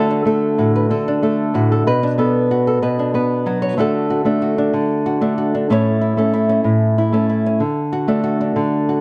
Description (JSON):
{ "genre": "highlife", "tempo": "125 BPM (dotted quarters)", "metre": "12/8", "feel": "straight", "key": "D major", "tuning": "A4 = 440 Hz", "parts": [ { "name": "nylon-string guitar", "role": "solo", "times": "0.0-9.0 s", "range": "A2 to C#5", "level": "-17 LUFS", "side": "equal", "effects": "none" } ], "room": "moderate spring reverb, RT60 1.3 s", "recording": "none", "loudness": "-17 LUFS", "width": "mono", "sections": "0.0-3.8 A section; 3.8-9.0 B section", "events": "none", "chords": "0.0 D; 1.9 Bm; 3.8 D; 5.7 A; 7.6 D" }